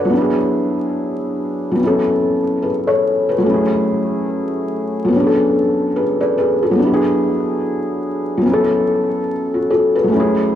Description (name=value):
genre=hip hop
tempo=72 BPM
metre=4/4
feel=swing 59% on 16ths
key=unclear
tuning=A4 = 436 Hz
part: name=felt-muted upright piano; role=solo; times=0.0-10.6 s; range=F#3 to F#5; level=-14 LUFS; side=left 1 dB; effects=cassette tape, analog delay
room=light reverb, small room ambience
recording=dry, gritty hardware recording, vinyl crackle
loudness=-15 LUFS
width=side -10 dB against mid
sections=0.0-3.4 A section; 3.4-10.6 B section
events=none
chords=0.1 E7; 1.8 A69; 3.4 F#m7; 5.1 Bm7/F#; 6.8 E7; 8.4 A69